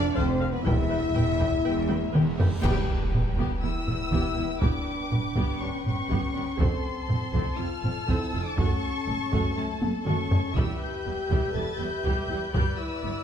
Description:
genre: cinematic, epic orchestral film score.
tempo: 121 BPM.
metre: 4/4.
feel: straight.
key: E dorian.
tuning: A4 = 436 Hz.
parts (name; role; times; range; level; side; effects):
rich symphonic violin section; melody; 0.0-13.2 s; B4 to A6; -36 LUFS; left 3 dB; none.
warm symphonic violin section; second line; 0.0-13.2 s; A4 to A5; -37 LUFS; left 3 dB; none.
mellow French horn section; sustained chords; 0.0-13.2 s; G3 to A4; -31 LUFS; left 4 dB; none.
rich symphonic cello section; bass; 0.0-13.1 s; E2 to G2; -34 LUFS; right 4 dB; none.
rich symphonic double bass section; bass; 0.0-13.1 s; E1 to G1; -33 LUFS; right 4 dB; none.
rich studio viola section; accompaniment; 0.2-13.1 s; G3 to G5; -35 LUFS; right 1 dB; none.
taiko ensemble; drums; 0.2-13.0 s; none; -28 LUFS; equal; none.
timpani; percussion; 0.6-3.3 s; E2; -38 LUFS; left 1 dB; none.
reverse cymbal and sub drop; sound effects; 2.4-4.6 s; none; -37 LUFS; equal; none.
clash cymbals and concert bass drum; percussion; 2.6-3.6 s; none; -34 LUFS; equal; none.
room: moderate scoring stage reverb, RT60 1.9 s.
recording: none.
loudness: -24 LUFS.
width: side -8 dB against mid.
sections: 0.0-2.6 A section; 2.6-13.2 B section.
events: drum fill 1.9-2.6, 9.8-10.6; reverse cymbal 2.4; band accent 2.6-3.1; impact 2.6-4.6.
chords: 0.0 F; 0.7 Em; 4.6 G; 6.6 F; 8.6 F#m; 10.6 Em; 12.5 G.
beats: 0.16 | 0.65 1.15 1.64 2.14 | 2.63 3.12 3.62 4.11 | 4.61 5.10 5.60 6.09 | 6.59 7.08 7.58 8.07 | 8.57 9.07 9.56 10.06 | 10.56 11.05 11.55 12.05 | 12.54 13.04.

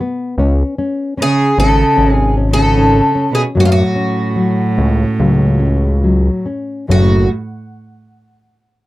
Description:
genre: fado-style ballad.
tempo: 74 BPM.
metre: 4/4.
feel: rubato.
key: F# minor.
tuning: A4 = 441 Hz.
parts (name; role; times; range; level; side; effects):
nylon-string guitar; accompaniment; 0.0-7.3 s; F#2 to C#4; -18 LUFS; left 2 dB; none.
fat analog bass; bass; 0.4-7.3 s; F#1 to F#2; -13 LUFS; equal; none.
picked twelve-string acoustic guitar; melody; 1.2-7.3 s; E#4 to A4; -17 LUFS; equal; none.
rich cello; second line; 1.2-7.3 s; G#2 to C#3; -18 LUFS; right 2 dB; none.
room: little or no reverb.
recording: dry, close 1970s-style studio recording.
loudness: -11 LUFS.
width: side -17 dB against mid.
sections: 0.0-6.9 A section; 6.9-8.9 B section.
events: none.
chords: 0.4 C#5; 3.6 F#m.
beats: | 0.37 1.17 1.97 2.77 | 3.56 4.37 5.19 6.04 | 6.89.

